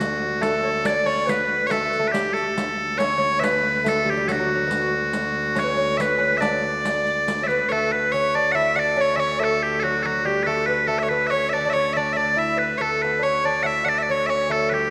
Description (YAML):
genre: medieval dance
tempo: 140 BPM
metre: 3/4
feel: straight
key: D major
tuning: A4 = 441 Hz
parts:
  - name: loud bright bagpipes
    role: melody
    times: 0.0-14.9 s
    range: F#4 to F#5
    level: -24 LUFS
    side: equal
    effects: none
  - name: rich viola da gamba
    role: drone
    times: 0.0-14.9 s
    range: D2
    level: -32 LUFS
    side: equal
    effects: none
  - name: riq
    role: percussion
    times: 0.0-7.6 s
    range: none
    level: -33 LUFS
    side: equal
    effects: none
  - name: bass recorder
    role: second line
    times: 0.4-14.9 s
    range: F#4 to E5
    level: -30 LUFS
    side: equal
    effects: none
  - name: lute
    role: second line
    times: 0.4-14.9 s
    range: F#3 to E4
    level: -30 LUFS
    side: equal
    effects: none
room: wet scoring stage reverb, RT60 1.8 s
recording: none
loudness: -22 LUFS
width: mono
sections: 0.0-7.7 A section; 7.7-14.9 B section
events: none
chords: none